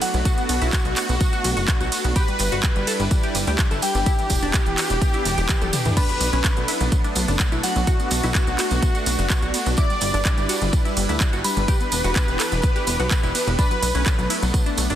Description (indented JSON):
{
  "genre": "progressive house",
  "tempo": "126 BPM",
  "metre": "4/4",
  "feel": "straight",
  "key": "B minor",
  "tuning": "A4 = 440 Hz",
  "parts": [
    { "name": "soft supersaw", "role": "melody", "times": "0.0-14.4 s", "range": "F#4 to D5", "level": "-27 LUFS", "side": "equal", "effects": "tape echo" },
    { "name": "soft synth bell", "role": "second line", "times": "0.0-14.4 s", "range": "F#5 to D6", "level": "-32 LUFS", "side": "left 2 dB", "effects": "chorus, sidechain pumping, dub echo" },
    { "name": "supersaw pad", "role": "sustained chords", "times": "0.0-15.0 s", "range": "E3 to B4", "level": "-29 LUFS", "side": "equal", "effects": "phaser, sidechain pumping" },
    { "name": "wide unison pluck", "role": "arpeggios", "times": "0.0-15.0 s", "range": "E3 to A4", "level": "-29 LUFS", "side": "equal", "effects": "sidechain pumping, dub echo" },
    { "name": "house drum kit", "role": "drums", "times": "0.0-15.0 s", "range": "crash cymbal, handclaps, hi-hat, ride cymbal, toms", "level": "-26 LUFS", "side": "right 2 dB", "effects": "none" },
    { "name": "tambourine", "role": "percussion", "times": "0.0-15.0 s", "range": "none", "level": "-32 LUFS", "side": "right 2 dB", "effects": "none" },
    { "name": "plucky analog bass", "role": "bass", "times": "0.1-15.0 s", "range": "E1 to E2", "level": "-24 LUFS", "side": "equal", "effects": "sidechain pumping" },
    { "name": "electronic kick drum", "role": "drums", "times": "0.3-14.6 s", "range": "none", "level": "-21 LUFS", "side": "equal", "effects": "none" }
  ],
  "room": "light reverb, digital ambience",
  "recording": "dense, heavily limited modern master",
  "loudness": "-18 LUFS",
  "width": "side -11 dB against mid",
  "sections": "0.0-15.0 A section",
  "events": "drum fill 5.6-6.0",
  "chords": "0.0 Bm7; 2.2 G6; 4.1 Em7; 6.0 Bm7; 9.8 G6; 11.7 Em7; 13.6 Bm7"
}